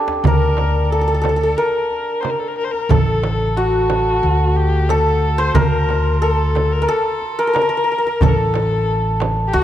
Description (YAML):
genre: Persian modal ensemble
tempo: 90 BPM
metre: 4/4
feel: straight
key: unclear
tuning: A4 = 440 Hz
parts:
  - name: santur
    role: melody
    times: 0.0-9.6 s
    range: D4 to C5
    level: -18 LUFS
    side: equal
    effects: none
  - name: tombak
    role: percussion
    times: 0.1-9.6 s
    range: none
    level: -22 LUFS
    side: left 2 dB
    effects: none
  - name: clear kamancheh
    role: second line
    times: 0.2-9.6 s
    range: F#4 to C5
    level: -24 LUFS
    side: left 4 dB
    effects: analog delay
  - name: upright bass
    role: bass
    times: 0.2-9.6 s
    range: A1 to D2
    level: -18 LUFS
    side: equal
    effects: none
  - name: frame drum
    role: percussion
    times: 0.2-9.4 s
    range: none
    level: -22 LUFS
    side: right 6 dB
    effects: none
room: moderate concert hall reverb, RT60 2.1 s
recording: close, detailed microphones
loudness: -15 LUFS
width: side -11 dB against mid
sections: 0.2-9.6 A section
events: drum fill 0.0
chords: none